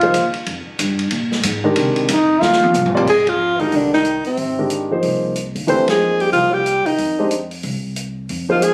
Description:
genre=modal jazz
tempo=184 BPM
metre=4/4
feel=swing 62% on 8ths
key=F dorian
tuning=A4 = 441 Hz
part: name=clear trombone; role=second line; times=0.0-8.7 s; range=C3 to F4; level=-22 LUFS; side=equal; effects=none
part: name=dark concert grand piano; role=accompaniment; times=0.0-8.6 s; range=Eb3 to Eb5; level=-21 LUFS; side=equal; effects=none
part: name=upright bass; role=bass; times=0.0-8.7 s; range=Ab1 to C3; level=-28 LUFS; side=equal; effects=none
part: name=open jazz drum kit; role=drums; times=0.0-8.7 s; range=crash cymbal, hi-hat, kick drum, ride cymbal, snare drum, toms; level=-28 LUFS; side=equal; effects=none
part: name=breathy alto saxophone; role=melody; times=3.1-8.7 s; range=C4 to C5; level=-18 LUFS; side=equal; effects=none
room=light reverb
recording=recorded on a phone in the room, club reverb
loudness=-18 LUFS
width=mono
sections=0.0-3.1 A section; 3.1-8.7 B section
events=trombone solo 0.0-3.1; drum fill 2.4-3.1; band accent 3.2, 5.8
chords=0.0 Fm11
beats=0.15 | 0.47 0.80 1.12 1.45 | 1.77 2.10 2.42 2.75 | 3.07 3.40 3.73 4.05 | 4.38 4.71 5.03 5.36 | 5.68 6.01 6.34 6.67 | 6.99 7.32 7.65 7.97 | 8.30 8.63

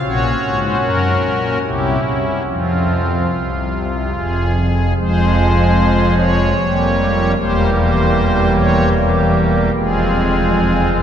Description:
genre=classical, chorale-style piece for pipe organ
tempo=75 BPM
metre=3/4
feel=rubato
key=F minor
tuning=A4 = 439 Hz
part: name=pipe organ, strings celeste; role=solo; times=0.0-11.0 s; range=E1 to Db5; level=-13 LUFS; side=equal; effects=none
room=wet cathedral reverb, RT60 6.1 s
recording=recorded in a church or concert hall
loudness=-13 LUFS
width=side -9 dB against mid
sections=0.0-5.0 A section; 5.0-11.0 B section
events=none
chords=0.0 Gb/Bb; 1.6 C; 2.4 Fm; 6.6 Gm7b5/F; 7.4 C7/E; 9.7 Fm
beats=| 0.01 0.81 1.62 | 2.45 3.29 4.14 | 4.96 5.77 6.56 | 7.36 8.15 8.95 | 9.73 10.53

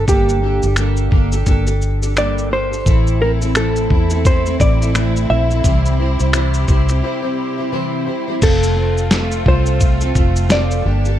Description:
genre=acoustic pop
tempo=86 BPM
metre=4/4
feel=swing 60% on 16ths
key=F major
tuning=A4 = 441 Hz
part: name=hollow-body jazz guitar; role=melody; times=0.0-11.2 s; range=G4 to E5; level=-20 LUFS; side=equal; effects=none
part: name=fingerpicked plugged-in steel-string acoustic guitar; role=accompaniment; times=0.0-11.2 s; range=A2 to C5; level=-21 LUFS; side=equal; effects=double-tracked left and right
part: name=vintage muted fingered electric bass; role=bass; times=0.0-11.2 s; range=F1 to E2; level=-17 LUFS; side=equal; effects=none
part: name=dusty soul sampler-style drum kit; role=drums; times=0.1-11.2 s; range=crash cymbal, finger snaps, kick drum, shaker, snare drum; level=-16 LUFS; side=equal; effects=none
part: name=clear studio string section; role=sustained chords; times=2.9-11.2 s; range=C3 to A5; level=-28 LUFS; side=left 1 dB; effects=none
room=digital ambience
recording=dark, warm production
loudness=-13 LUFS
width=side -12 dB against mid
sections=0.0-8.4 A section; 8.4-11.2 B section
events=break 7.0-8.4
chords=0.0 Gmadd9; 2.9 Am; 5.6 C; 8.4 F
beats=| 0.08 0.78 1.47 2.17 | 2.86 3.55 4.25 4.94 | 5.64 6.33 7.03 7.72 | 8.41 9.11 9.80 10.50

